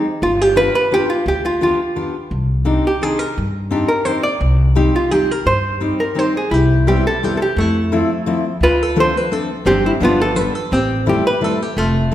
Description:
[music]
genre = musette waltz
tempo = 172 BPM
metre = 3/4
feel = straight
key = C minor, C major from 6.5 s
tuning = A4 = 440 Hz
[part]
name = fingerpicked steel-string acoustic guitar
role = accompaniment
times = 0.0-12.1 s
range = F3 to G4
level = -20 LUFS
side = left 2 dB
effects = none
[part]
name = archtop guitar, miked and amplified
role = melody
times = 0.2-12.1 s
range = A3 to D5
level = -16 LUFS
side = right 1 dB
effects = none
[part]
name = upright bass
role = bass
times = 0.2-12.1 s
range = F1 to G2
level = -19 LUFS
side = equal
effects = none
[sound]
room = wet recital hall reverb, RT60 1.6 s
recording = recorded in a church or concert hall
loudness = -14 LUFS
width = side -12 dB against mid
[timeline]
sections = 0.0-6.5 A section; 6.5-12.1 B section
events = none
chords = 0.2 G7; 2.3 Cmadd9; 4.4 Cm; 6.5 Cmaj7; 7.6 Fmaj7; 8.6 Dm7; 9.7 G7sus4; 10.0 G7; 10.7 Am7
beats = | 0.22 0.56 0.91 | 1.26 1.61 1.96 | 2.31 2.66 3.02 | 3.37 3.71 4.06 | 4.41 4.75 5.10 | 5.45 5.80 6.15 | 6.51 6.86 7.21 | 7.56 7.91 8.26 | 8.60 8.95 9.30 | 9.65 10.00 10.35 | 10.71 11.06 11.41 | 11.76 12.11

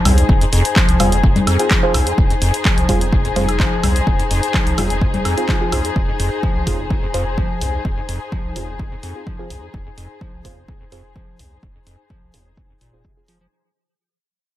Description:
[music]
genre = acid house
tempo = 127 BPM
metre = 4/4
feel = straight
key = F minor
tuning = A4 = 441 Hz
[part]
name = acid bass, square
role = riff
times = 0.0-13.5 s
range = Eb2 to F3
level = -23 LUFS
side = equal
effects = wide subtle chorus, sidechain pumping, tape echo
[part]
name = muted studio string section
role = texture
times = 0.0-13.5 s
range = Eb4 to C5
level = -23 LUFS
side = left 4 dB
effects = sidechain pumping
[part]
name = round analog bass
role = bass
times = 0.1-13.5 s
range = F1 to C2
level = -21 LUFS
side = equal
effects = tube saturation, sidechain pumping
[part]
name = punchy analog drum machine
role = drums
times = 0.1-13.4 s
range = congas, handclaps, hi-hat, woodblock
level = -21 LUFS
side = equal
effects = none
[part]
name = electronic kick drum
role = drums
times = 0.3-13.1 s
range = none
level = -18 LUFS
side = equal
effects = none
[part]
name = band-passed chord stab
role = stabs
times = 1.0-13.4 s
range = C4 to Ab4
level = -24 LUFS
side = right 2 dB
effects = chorus, phaser, tape echo
[sound]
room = light reverb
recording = none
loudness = -15 LUFS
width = side -13 dB against mid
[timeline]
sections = 0.0-13.5 A section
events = fade-out 0.0-13.5; filter sweep on synth stab 0.0-13.5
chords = 0.0 Fm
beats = | 0.29 0.76 1.24 1.71 | 2.18 2.65 3.12 3.60 | 4.07 4.54 5.01 5.49 | 5.96 6.43 6.91 7.38 | 7.85 8.32 8.79 9.27 | 9.74 10.21 10.68 11.16 | 11.63 12.10 12.57 13.05

